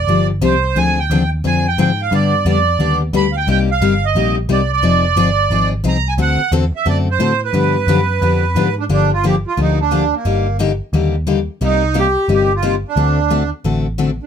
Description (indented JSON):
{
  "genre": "acoustic string swing (jazz manouche)",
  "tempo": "177 BPM",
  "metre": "4/4",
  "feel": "swing 62% on 8ths",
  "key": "G minor from 8.9 s",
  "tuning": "A4 = 439 Hz",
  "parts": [
    { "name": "accordion", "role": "melody", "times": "0.0-14.3 s", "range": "Bb3 to B5", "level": "-17 LUFS", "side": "right 5 dB", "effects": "light tremolo tuning" },
    { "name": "vintage muted picked electric bass", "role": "bass", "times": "0.0-14.2 s", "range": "F1 to A2", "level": "-18 LUFS", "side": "equal", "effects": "none" },
    { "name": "picked steel-string acoustic guitar", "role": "accompaniment", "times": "0.1-14.1 s", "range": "C3 to A4", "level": "-17 LUFS", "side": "left 5 dB", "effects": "none" }
  ],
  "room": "light reverb",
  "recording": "close, detailed microphones",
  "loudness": "-13 LUFS",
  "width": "side -8 dB against mid",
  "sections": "0.0-8.9 A section; 8.9-14.3 B section",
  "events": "none",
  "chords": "0.0 G7sus4; 0.8 Dm7b5; 2.1 G; 3.5 Cm7; 4.8 Fm7; 6.2 D7; 7.5 G7; 8.9 Gm7; 10.3 Ebmaj7/G; 11.6 Cm7; 13.0 D7"
}